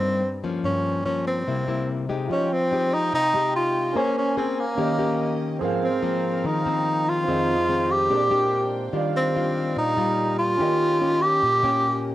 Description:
bossa nova; 145 BPM; 4/4; straight; F minor; A4 = 440 Hz
breathy tenor saxophone; melody; 0.0-12.0 s; Bb3 to G4; -22 LUFS; equal; cassette tape
nylon-string guitar; accompaniment; 0.0-12.1 s; F2 to C5; -26 LUFS; left 3 dB; cassette tape
warm concert grand piano; accompaniment; 2.3-12.1 s; C4 to Ab5; -30 LUFS; right 7 dB; cassette tape
warm chamber string section; sustained chords; 2.3-12.1 s; C4 to Ab5; -34 LUFS; right 1 dB; cassette tape
moderate spring reverb, RT60 1.6 s, small room ambience; home recording on cassette; -20 LUFS; side -14 dB against mid
0.0-2.3 A section; 2.3-12.1 B section
0.0 Cm7; 0.6 Gm7b5; 1.5 C7; 2.3 Fm9; 4.0 Bbm9; 4.8 Eb7; 5.6 Ab69; 7.3 Fm7; 8.1 Bb13; 8.9 Ebmaj9; 10.6 Eb7
0.22 | 0.64 1.05 1.47 1.88 | 2.30 2.71 3.13 3.54 | 3.96 4.37 4.79 5.20 | 5.62 6.03 6.45 6.86 | 7.27 7.69 8.10 8.52 | 8.93 9.35 9.76 10.18 | 10.59 11.01 11.42 11.84

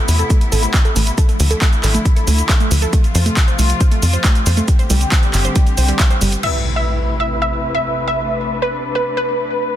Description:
uplifting trance; 137 BPM; 4/4; straight; A minor; A4 = 440 Hz
muted studio string section; sustained chords; 0.0-9.8 s; C3 to B4; -23 LUFS; left 3 dB; sidechain pumping, low-pass filter
wide unison pluck; arpeggios; 0.0-6.3 s; G3 to C5; -24 LUFS; right 3 dB; sidechain pumping, ping-pong delay
tight sequencer bass; bass; 0.1-6.4 s; G1 to F2; -15 LUFS; equal; sidechain pumping
punchy analog drum machine; drums; 0.1-6.5 s; crash cymbal, handclaps, hi-hat, shaker; -21 LUFS; right 1 dB; overdrive
electronic kick drum; drums; 0.3-6.1 s; -14 LUFS; equal
supersaw stab; melody; 6.4-9.8 s; B4 to E5; -20 LUFS; right 2 dB; phaser, sidechain pumping, low-pass filter, ping-pong delay
wide unison pluck; second line; 6.4-9.8 s; B4 to E5; -25 LUFS; equal; sidechain pumping, ping-pong delay
impact; sound effects; 6.4-8.2 s; -23 LUFS; equal
little or no reverb; dense, heavily limited modern master; -13 LUFS; side -12 dB against mid
0.0-6.4 A section; 6.4-9.8 B section
filter sweep on synth arpeggio sound 0.0-6.4; impact 6.4-8.2; filter sweep on supersaw synth 6.4-9.8; filter sweep on string section 6.4-9.8
0.0 Amadd9; 1.2 Dmadd9; 2.9 F; 4.7 Csus2; 6.4 Amadd9
0.30 0.74 | 1.18 1.62 2.06 2.49 | 2.93 3.37 3.81 4.24 | 4.68 5.12 5.56 6.00 | 6.43 6.87 7.31 7.75 | 8.19 8.62 9.06 9.50

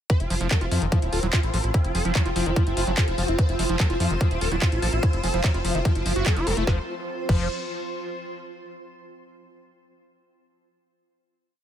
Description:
psychedelic trance; 146 BPM; 4/4; straight; A4 = 440 Hz
swarming rave lead; melody; 0.1-7.4 s; F4 to C5; -30 LUFS; equal; chorus, phaser, cassette tape, sidechain pumping, ping-pong delay
bubbling stepped-filter texture; sustained chords; 0.1-6.7 s; F3 to C4; -35 LUFS; equal; chorus, built-in reverb, sidechain pumping
drum and bass drum kit; drums; 0.1-7.4 s; crash cymbal, handclaps, hi-hat, snare drum; -30 LUFS; equal
electronic kick drum; drums; 0.1-7.4 s; -21 LUFS; equal
granular cloud pad; texture; 1.6-8.3 s; F4 to C6; -33 LUFS; right 1 dB; built-in reverb, sidechain pumping
round analog bass; bass; 0.2-7.5 s; Eb1 to F2; -26 LUFS; equal
screaming distorted acid line; riff; 0.3-7.5 s; Eb3 to Gb4; -31 LUFS; moving between left 4 dB and right 4 dB; distortion, chorus, auto-pan, sidechain pumping, ping-pong delay
digital ambience; -21 LUFS; side -10 dB against mid
0.1-6.7 drop; 6.7-8.3 final chord
drop 0.1-6.7
0.1 F5
| 0.10 0.51 0.92 1.33 | 1.74 2.15 2.56 2.98 | 3.39 3.80 4.21 4.62 | 5.03 5.44 5.85 6.26 | 6.67 7.08 7.50 7.91

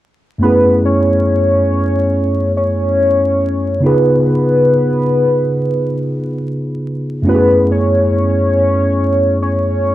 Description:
hip hop; 70 BPM; 4/4; swing 60% on 16ths; F# dorian; A4 = 440 Hz
warm velvety synth lead; melody; 0.4-9.9 s; B4 to C#5; -14 LUFS; left 1 dB; chorus, tremolo, low-pass filter, plate reverb
mellow tine electric piano; accompaniment; 0.4-9.9 s; F#2 to G#4; -15 LUFS; equal; slow stereo tremolo, cassette tape, low-pass filter, plate reverb
moderate studio reverb, RT60 0.5 s; vinyl crackle; -12 LUFS; side -14 dB against mid
0.4-9.9 A section
0.4 F#m11; 3.8 C#7; 7.3 F#m11
| 0.41 1.27 2.13 2.98 | 3.84 4.70 5.56 6.41 | 7.27 8.13 8.98 9.84

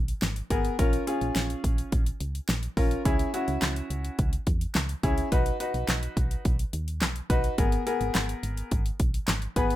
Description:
synth-pop; 106 BPM; 4/4; straight; A4 = 438 Hz
solid FM bass; bass; 0.0-9.8 s; G#1 to E2; -30 LUFS; equal
pop drum kit; drums; 0.1-9.8 s; handclaps, hi-hat, kick drum, snare drum; -27 LUFS; equal
bright baby grand piano; accompaniment; 0.5-9.8 s; B3 to B4; -29 LUFS; left 2 dB
light reverb; rough home demo mix; -25 LUFS; side -14 dB against mid
0.0-9.8 A section
0.0 G#madd9; 0.8 A#m; 3.1 C#m; 5.3 B; 7.6 G#madd9
0.22 | 0.79 1.36 1.92 2.49 | 3.05 3.62 4.19 4.75 | 5.32 5.88 6.45 7.02 | 7.58 8.15 8.71 9.28

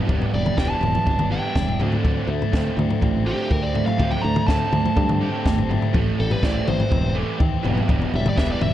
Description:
indie rock; 123 BPM; 4/4; straight; A4 = 440 Hz
biting overdriven guitar; riff; 0.0-8.7 s; A2 to C4; -27 LUFS; right 7 dB; analog chorus
raw garage guitar; riff; 0.0-8.7 s; E2 to G4; -29 LUFS; left 7 dB; overdrive
fingered electric bass; bass; 0.1-8.7 s; E1 to G2; -25 LUFS; equal
compact cocktail drum kit; drums; 0.1-8.7 s; kick drum, snare drum, toms; -22 LUFS; equal
biting lead guitar; melody; 0.3-8.7 s; G4 to Bb5; -27 LUFS; right 1 dB; overdrive
light reverb, studio reverb; dark, warm production; -18 LUFS; side -12 dB against mid
0.0-8.7 A section
lead electric guitar solo 0.0-8.7
0.0 Em7; 1.8 D7sus4; 5.9 Am7; 7.6 Em7
| 0.10 0.58 1.07 1.56 | 2.05 2.54 3.02 3.51 | 4.00 4.49 4.97 5.46 | 5.95 6.43 6.92 7.41 | 7.89 8.38

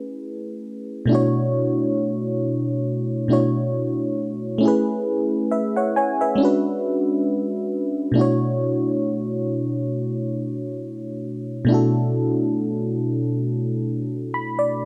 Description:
R&B; 68 BPM; 4/4; swing 55% on 16ths; B dorian; A4 = 437 Hz
FM electric piano; solo; 0.0-14.9 s; B2 to B5; -22 LUFS; equal; chorus
wet small room reverb, RT60 0.5 s; -22 LUFS; mono
0.0-8.2 A section; 8.2-14.9 B section
FM electric piano fill 13.9-14.9
0.0 Amaj7; 1.1 Bm11; 4.6 Amaj7; 6.4 Bm69; 8.2 Bm11
0.21 | 1.09 1.97 2.86 3.74 | 4.62 5.50 6.39 7.27 | 8.15 9.03 9.91 10.80 | 11.68 12.56 13.45 14.33

